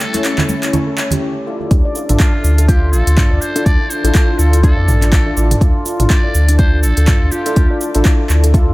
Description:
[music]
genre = afro house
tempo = 123 BPM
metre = 4/4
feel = swing 57% on 16ths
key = D harmonic minor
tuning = A4 = 440 Hz
[part]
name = trumpet with metal mute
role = melody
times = 0.0-7.8 s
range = F4 to D5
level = -24 LUFS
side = equal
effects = analog delay
[part]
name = warm analog pad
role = sustained chords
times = 0.0-1.2 s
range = C#3 to E4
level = -35 LUFS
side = equal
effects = none
[part]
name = warm analog keys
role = stabs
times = 0.0-8.7 s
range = C#4 to G5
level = -22 LUFS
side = left 2 dB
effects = chorus, sidechain pumping, low-pass filter, analog delay
[part]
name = deep house drum kit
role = drums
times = 0.0-8.7 s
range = cabasa, handclaps, hi-hat, toms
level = -21 LUFS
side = right 1 dB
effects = none
[part]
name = handpan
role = arpeggios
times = 0.1-8.7 s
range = A3 to D5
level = -21 LUFS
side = equal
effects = sidechain pumping, analog delay
[part]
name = congas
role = percussion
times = 0.1-1.2 s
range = none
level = -20 LUFS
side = right 2 dB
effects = analog delay
[part]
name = warm sub bass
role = bass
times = 1.7-8.7 s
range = A1 to F2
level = -13 LUFS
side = equal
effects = sidechain pumping
[part]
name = electronic kick drum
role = drums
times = 1.7-8.7 s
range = none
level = -12 LUFS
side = equal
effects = none
[sound]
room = little or no reverb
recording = echo-heavy mix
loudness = -11 LUFS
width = side -19 dB against mid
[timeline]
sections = 0.0-1.7 A section; 1.7-8.7 B section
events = break 1.2-1.7; drop 1.7-8.7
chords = 0.0 A; 1.7 Dmadd9

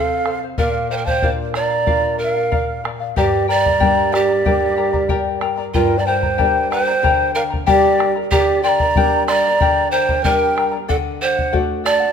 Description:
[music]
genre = andean folk, Andean ensemble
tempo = 93 BPM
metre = 4/4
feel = straight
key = G minor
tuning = A4 = 440 Hz
[part]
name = breathy pan flute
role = melody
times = 0.0-12.1 s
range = F4 to D5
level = -18 LUFS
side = right 4 dB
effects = none
[part]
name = breathy large quena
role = second line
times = 0.0-12.1 s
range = Bb4 to C6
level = -23 LUFS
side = right 4 dB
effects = none
[part]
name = charango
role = accompaniment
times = 0.0-12.1 s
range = G4 to Bb5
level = -21 LUFS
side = left 9 dB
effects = none
[part]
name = nylon-string guitar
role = accompaniment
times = 0.0-12.0 s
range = G2 to Bb4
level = -25 LUFS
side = left 4 dB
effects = none
[part]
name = bombo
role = percussion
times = 0.3-12.0 s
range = none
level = -23 LUFS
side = left 1 dB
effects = none
[sound]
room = moderate recital hall reverb, RT60 1.5 s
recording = minimal, uncompressed stereo recording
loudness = -15 LUFS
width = side -7 dB against mid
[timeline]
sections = 0.0-5.7 A section; 5.7-12.1 A section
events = nylon-string guitar fill 4.8-5.7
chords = 0.0 F; 0.6 Bb; 3.2 Gm; 10.9 D

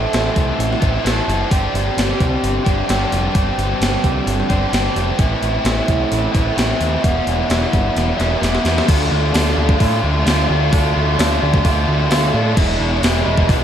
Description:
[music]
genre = rock, shoegaze and dream pop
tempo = 130 BPM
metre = 4/4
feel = straight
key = unclear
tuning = A4 = 441 Hz
[part]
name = biting overdriven guitar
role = riff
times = 0.0-13.6 s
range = E2 to A4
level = -18 LUFS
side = equal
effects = wide subtle chorus
[part]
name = growling picked electric bass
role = bass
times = 0.0-13.6 s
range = E1 to A2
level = -20 LUFS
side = equal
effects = overdrive
[part]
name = gated 80s digital drum machine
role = drums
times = 0.1-13.6 s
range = crash cymbal, hi-hat, kick drum, snare drum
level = -19 LUFS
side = equal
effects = gated reverb, gated reverb snare, overdrive
[sound]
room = light reverb, digital ambience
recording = none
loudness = -14 LUFS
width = side -9 dB against mid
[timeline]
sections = 0.0-8.9 A section; 8.9-13.6 B section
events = drum fill 8.0-8.9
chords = 0.0 Am; 1.5 Gsus4; 5.2 Am; 7.0 Em; 8.9 Dm; 12.6 E7

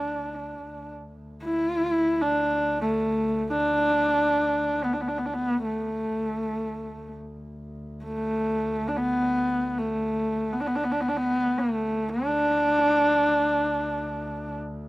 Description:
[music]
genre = mongolian traditional, Mongolian folk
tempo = free time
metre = none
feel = none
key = unclear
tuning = A4 = 440 Hz
[part]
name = rich horsehead fiddle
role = melody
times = 0.0-14.6 s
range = A3 to E4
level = -23 LUFS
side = equal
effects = slapback echo
[part]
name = warm double bass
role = drone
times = 0.0-14.9 s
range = D2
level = -39 LUFS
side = equal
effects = none
[sound]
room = light reverb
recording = recorded outdoors, with no room sound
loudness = -23 LUFS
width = side -18 dB against mid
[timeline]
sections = 0.0-14.9 A section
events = none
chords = none

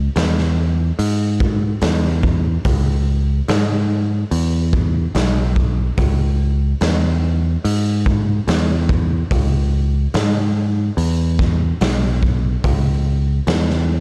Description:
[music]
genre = stoner and doom metal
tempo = 72 BPM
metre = 4/4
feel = straight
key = C# minor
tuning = A4 = 440 Hz
[part]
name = picked electric bass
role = bass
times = 0.0-14.0 s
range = B1 to G#2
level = -19 LUFS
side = equal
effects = overdrive
[part]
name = raw garage drum kit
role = drums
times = 0.2-13.8 s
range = hi-hat, kick drum, snare drum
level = -23 LUFS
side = equal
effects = none
[sound]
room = little or no reverb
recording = dark, warm production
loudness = -18 LUFS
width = mono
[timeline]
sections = 0.0-14.0 A section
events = none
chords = none

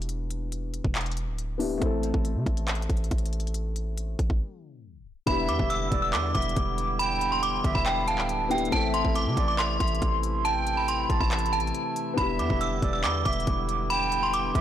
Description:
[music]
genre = hip hop, trap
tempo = 139 BPM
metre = 4/4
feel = half-time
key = E minor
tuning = A4 = 440 Hz
[part]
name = dark grand piano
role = accompaniment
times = 0.0-14.6 s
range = A3 to A4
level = -35 LUFS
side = left 4 dB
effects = none
[part]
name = hard-hitting 808-style bass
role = bass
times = 0.0-14.6 s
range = D1 to C3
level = -30 LUFS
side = equal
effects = none
[part]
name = trap drum kit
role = drums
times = 0.0-14.6 s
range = handclaps, hi-hat, kick drum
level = -30 LUFS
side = equal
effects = none
[part]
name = metallic FM bell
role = melody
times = 5.3-14.6 s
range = G5 to E6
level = -27 LUFS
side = right 1 dB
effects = chorus, phaser
[part]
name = jazz flute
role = second line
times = 5.3-14.6 s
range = D5 to A5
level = -34 LUFS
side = right 4 dB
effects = tape echo
[part]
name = pipe organ, cornet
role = sustained chords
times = 5.3-14.6 s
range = C3 to E4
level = -34 LUFS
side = equal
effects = none
[sound]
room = small room ambience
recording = blown-out, overdriven recording, overdrive, tape stop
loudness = -24 LUFS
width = side -11 dB against mid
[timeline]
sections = 0.0-5.3 A section; 5.3-14.6 B section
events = break 4.4-5.3; tape stop 4.4-5.3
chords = 0.0 Em7; 1.8 Am; 5.3 Em7; 8.7 Am; 12.2 Em7

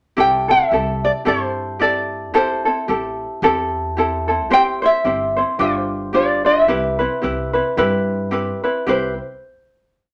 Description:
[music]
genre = Hawaiian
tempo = 110 BPM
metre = 4/4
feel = swing 58% on 8ths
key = C major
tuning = A4 = 440 Hz
[part]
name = ukulele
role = melody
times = 0.2-9.2 s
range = C5 to G5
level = -20 LUFS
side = equal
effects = none
[part]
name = ukulele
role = accompaniment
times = 0.2-9.1 s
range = C4 to C5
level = -21 LUFS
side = equal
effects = none
[part]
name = upright bass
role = bass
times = 0.2-9.2 s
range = G1 to G2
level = -30 LUFS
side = equal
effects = none
[sound]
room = wet studio reverb, RT60 0.6 s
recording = none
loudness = -18 LUFS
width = mono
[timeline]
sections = 0.2-8.9 A section; 8.9-10.1 final chord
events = none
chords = 0.2 C6; 2.3 Am7; 4.5 C/G; 5.6 G7sus4; 6.7 Cmaj7

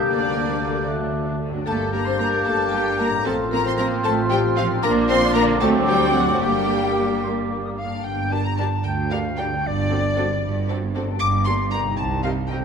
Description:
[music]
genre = cinematic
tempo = 76 BPM (dotted quarters)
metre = 6/8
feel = straight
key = G minor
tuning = A4 = 441 Hz
[part]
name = marimba with medium hard mallets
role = melody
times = 0.0-7.2 s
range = D4 to C5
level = -27 LUFS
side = left 4 dB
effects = none
[part]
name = mellow oboe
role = second line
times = 0.0-7.7 s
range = C5 to D5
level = -30 LUFS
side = right 4 dB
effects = none
[part]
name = silver concert flute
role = second line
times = 0.0-12.6 s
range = D5 to G6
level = -27 LUFS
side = left 2 dB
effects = none
[part]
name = warm clarinet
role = second line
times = 0.0-7.7 s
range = D4 to G4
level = -31 LUFS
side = left 2 dB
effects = none
[part]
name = warm bassoon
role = accompaniment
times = 0.0-7.7 s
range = A3 to C4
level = -29 LUFS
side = right 1 dB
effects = none
[part]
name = warm studio viola section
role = accompaniment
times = 0.0-12.6 s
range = D3 to G4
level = -28 LUFS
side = right 1 dB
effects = none
[part]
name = mellow French horn section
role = sustained chords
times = 0.0-7.8 s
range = A3 to G4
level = -29 LUFS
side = left 3 dB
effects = none
[part]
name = concert harp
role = arpeggios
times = 0.0-12.6 s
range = G2 to G4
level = -30 LUFS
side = left 7 dB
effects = none
[part]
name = warm studio double bass section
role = bass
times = 0.0-12.6 s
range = G1 to D2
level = -28 LUFS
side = right 5 dB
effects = none
[part]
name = warm studio violin section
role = melody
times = 0.1-12.6 s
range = D4 to D6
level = -32 LUFS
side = left 4 dB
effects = none
[part]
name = rich studio violin section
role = second line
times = 0.1-12.6 s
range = A4 to C6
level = -28 LUFS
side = left 4 dB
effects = none
[part]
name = warm studio cello section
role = bass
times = 0.1-12.6 s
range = C2 to C4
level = -27 LUFS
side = right 4 dB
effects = none
[sound]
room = wet concert hall reverb, RT60 1.9 s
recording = minimal, uncompressed stereo recording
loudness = -19 LUFS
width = side -6 dB against mid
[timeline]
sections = 0.0-8.0 A section; 8.0-12.6 A section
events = none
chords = 0.1 Gm/D; 1.7 Gm; 3.3 F/A; 4.8 Bb; 5.6 D7; 6.4 Gm; 9.6 D7/G; 11.2 Gm; 12.0 Cm7

